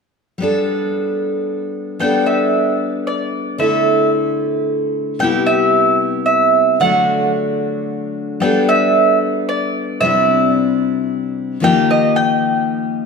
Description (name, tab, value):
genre	folk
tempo	112 BPM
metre	3/4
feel	straight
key	G major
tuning	A4 = 436 Hz
part	picked steel-string acoustic guitar	accompaniment	0.4-13.1 s	C3 to A4	-17 LUFS	left 3 dB	none
part	mandolin	melody	2.0-13.1 s	D5 to G5	-16 LUFS	right 2 dB	none
room	wet concert hall reverb, RT60 2.1 s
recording	minimal, uncompressed stereo recording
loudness	-14 LUFS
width	side -5 dB against mid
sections	0.4-2.0 A section; 2.0-13.1 B section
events	none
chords	0.4 Gadd9; 3.6 Dsus2; 5.2 Cmaj7; 6.8 D; 8.4 Gadd9; 10.0 Cadd9; 11.6 Ebadd9